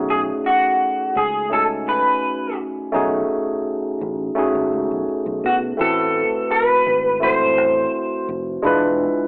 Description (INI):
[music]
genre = lush 1970s-style soul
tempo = 84 BPM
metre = 4/4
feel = straight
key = unclear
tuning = A4 = 443 Hz
[part]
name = barky tine electric piano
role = accompaniment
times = 0.0-9.3 s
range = G#3 to G#5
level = -23 LUFS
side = equal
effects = overdrive, subtle chorus, cassette tape
[part]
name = fingered electric bass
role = bass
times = 0.0-9.1 s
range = E1 to B2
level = -34 LUFS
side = equal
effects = none
[part]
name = electric guitar through a small old amp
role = melody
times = 0.1-8.3 s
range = F#4 to C5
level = -20 LUFS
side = equal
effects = lush chorus, cassette tape
[sound]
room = moderate spring reverb, RT60 1.2 s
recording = home recording on cassette, telephone sound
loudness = -20 LUFS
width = mono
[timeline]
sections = 0.0-5.8 A section; 5.8-9.3 B section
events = none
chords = 0.0 B13; 5.8 Am6; 8.6 E7b9